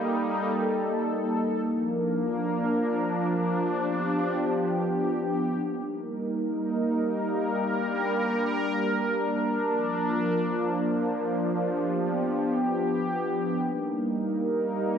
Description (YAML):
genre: hip hop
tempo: free time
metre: none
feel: none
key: Eb lydian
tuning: A4 = 442 Hz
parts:
  - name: sweeping resonant pad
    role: solo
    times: 0.0-15.0 s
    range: F3 to Bb4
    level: -25 LUFS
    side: equal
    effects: chorus, tape echo
room: wet lush hall reverb, RT60 3.0 s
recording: dreamy mix soaked in reverb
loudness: -25 LUFS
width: side -8 dB against mid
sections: 0.0-13.6 A section; 13.6-15.0 B section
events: none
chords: 0.0 Eb; 1.6 Bb; 3.6 G7; 5.6 Eb; 9.6 Bb; 11.6 G7; 13.6 Eb